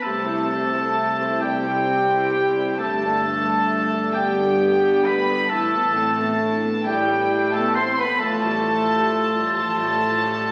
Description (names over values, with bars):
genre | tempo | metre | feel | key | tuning
cinematic, emotional film score for orchestra | 44 BPM (dotted quarters) | 6/8 | rubato | C major | A4 = 440 Hz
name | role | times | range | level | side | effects
clear clarinet | second line | 0.0-10.5 s | A3 to F4 | -34 LUFS | equal | none
clear oboe | second line | 0.0-10.5 s | G4 to C5 | -26 LUFS | equal | none
silver concert flute | second line | 0.0-10.5 s | G5 to C6 | -32 LUFS | equal | none
warm symphonic violin section | second line | 0.0-10.5 s | G5 to C6 | -30 LUFS | equal | none
warm studio viola section | accompaniment | 0.0-10.5 s | F3 to C5 | -32 LUFS | equal | none
rich symphonic double bass section | bass | 0.0-10.5 s | G1 to C2 | -41 LUFS | equal | none
warm symphonic cello section | bass | 0.0-10.5 s | G2 to C3 | -33 LUFS | equal | none
warm symphonic violin section | melody | 0.1-10.5 s | G5 to C6 | -35 LUFS | equal | none
mellow French horn section | sustained chords | 0.1-10.5 s | G3 to C4 | -26 LUFS | equal | none
room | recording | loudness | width
wet scoring stage reverb, RT60 1.7 s | very old 78 rpm record, vinyl crackle | -21 LUFS | mono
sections
0.0-10.5 A section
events
none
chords
0.0 C; 2.8 Gsus2; 5.5 Asus2; 8.2 Fadd9/A